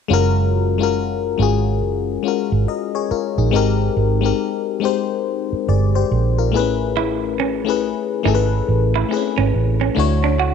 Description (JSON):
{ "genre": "R&B, neo-soul", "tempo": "70 BPM", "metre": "4/4", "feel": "swing 63% on 16ths", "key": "unclear", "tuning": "A4 = 436 Hz", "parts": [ { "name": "FM electric piano", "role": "accompaniment", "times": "0.1-10.5 s", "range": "G#3 to D#5", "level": "-19 LUFS", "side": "left 11 dB", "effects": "chorus" }, { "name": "vintage muted fingered electric bass", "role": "bass", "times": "0.1-10.5 s", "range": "F#1 to D2", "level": "-18 LUFS", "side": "right 3 dB", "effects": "none" }, { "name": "semi-hollow electric guitar", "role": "second line", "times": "7.0-10.5 s", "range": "C#4 to F#4", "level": "-23 LUFS", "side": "right 14 dB", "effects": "none" } ], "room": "light reverb", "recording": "1960s-style stereo with parts hard left and right", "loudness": "-16 LUFS", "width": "side -7 dB against mid", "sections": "0.1-10.5 A section", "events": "none", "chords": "0.1 F#maj9; 3.5 G#maj9; 6.5 Amaj9; 10.0 Dmaj9" }